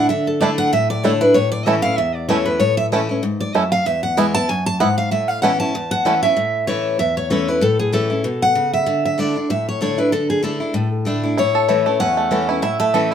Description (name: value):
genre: bluegrass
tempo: 192 BPM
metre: 4/4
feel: swing 56% on 8ths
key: A major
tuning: A4 = 440 Hz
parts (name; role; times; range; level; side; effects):
- picked steel-string acoustic guitar; melody; 0.0-13.1 s; G#4 to A5; -18 LUFS; left 1 dB; none
- picked steel-string acoustic guitar; accompaniment; 0.0-13.1 s; E2 to E4; -20 LUFS; left 1 dB; none
- bluegrass banjo; arpeggios; 0.4-6.1, 11.4-13.1 s; A3 to A4; -20 LUFS; right 5 dB; none
room: moderate studio reverb, RT60 0.7 s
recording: minimal, uncompressed stereo recording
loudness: -16 LUFS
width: side -8 dB against mid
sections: 0.0-6.4 A section; 6.4-13.1 B section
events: steel-string acoustic guitar solo 0.0-6.4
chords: 0.0 Dsus2; 1.3 A; 3.9 E; 5.1 Aadd9; 8.9 Dsus2; 11.4 A